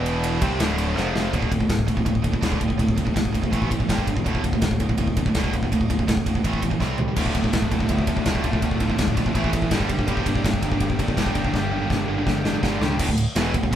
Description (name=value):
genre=heavy metal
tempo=165 BPM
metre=4/4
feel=straight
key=D minor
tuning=A4 = 440 Hz
part: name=rich chamber string section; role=sustained chords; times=0.0-1.3, 7.1-13.0 s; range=B2 to E6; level=-38 LUFS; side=left 1 dB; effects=none
part: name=distorted electric guitar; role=riff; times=0.0-1.3, 7.2-13.8 s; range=D2 to G4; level=-28 LUFS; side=equal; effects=overdrive
part: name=tight distorted guitar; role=riff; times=0.0-13.8 s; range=D2 to C4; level=-28 LUFS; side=left 3 dB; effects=distortion
part: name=tight distorted guitar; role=riff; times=0.0-13.8 s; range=D2 to C4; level=-27 LUFS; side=right 6 dB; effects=distortion
part: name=growling picked electric bass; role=bass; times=0.0-13.8 s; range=D1 to C#2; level=-28 LUFS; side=equal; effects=overdrive
part: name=big rock drum kit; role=drums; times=0.1-13.8 s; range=crash cymbal, kick drum, ride cymbal, snare drum, toms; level=-24 LUFS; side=equal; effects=none
room=light reverb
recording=band playing live in one room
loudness=-20 LUFS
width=side -10 dB against mid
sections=0.0-1.3 A section; 1.3-13.0 B section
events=half time 0.0-1.3; drum fill 1.0-1.3, 6.8-7.2, 11.5-13.0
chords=0.4 Dm; 1.0 F5; 1.3 D5; 3.5 A5; 3.9 G5; 4.3 D5; 6.4 A5; 6.8 C5; 7.2 Dm; 9.4 A5; 9.7 G5; 10.1 Gm; 13.0 D5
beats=0.24 0.60 0.97 | 1.33 1.70 2.06 2.43 | 2.79 3.16 3.52 3.89 | 4.25 4.62 4.98 5.35 | 5.71 6.08 6.44 6.81 | 7.17 7.53 7.90 8.26 | 8.63 8.99 9.36 9.72 | 10.08 10.45 10.81 11.18 | 11.54 11.90 12.27 12.63 | 13.00 13.36 13.73